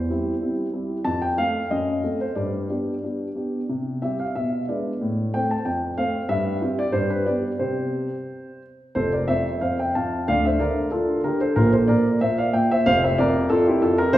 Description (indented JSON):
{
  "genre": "classical-period piano sonatina",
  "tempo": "92 BPM",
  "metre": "2/4",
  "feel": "rubato",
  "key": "C major, F major from 9.0 s",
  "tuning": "A4 = 440 Hz",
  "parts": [
    { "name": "dark concert grand piano", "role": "solo", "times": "0.0-14.2 s", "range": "F1 to A5", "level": "-20 LUFS", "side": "equal", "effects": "none" }
  ],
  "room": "wet recital hall reverb, RT60 1.8 s",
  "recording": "heard from further back in the room",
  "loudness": "-20 LUFS",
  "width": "side -14 dB against mid",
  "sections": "0.0-9.0 A section; 9.0-14.2 B section",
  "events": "none",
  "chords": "0.0 C/E; 1.1 F; 1.7 F#dim7; 2.4 G; 3.7 C5; 4.3 E7/B; 5.0 Am; 5.6 F; 6.3 C/G; 6.9 G; 7.6 C5; 9.0 F; 10.3 Dm; 11.6 Bb; 12.9 F5",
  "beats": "0.41 | 1.05 1.70 | 2.36 3.02 | 3.69 4.34 | 5.00 5.64 | 6.29 6.94 | 7.60 8.28 | 8.95 9.61 | 10.27 10.91 | 11.56 12.20 | 12.85 13.49 | 14.12"
}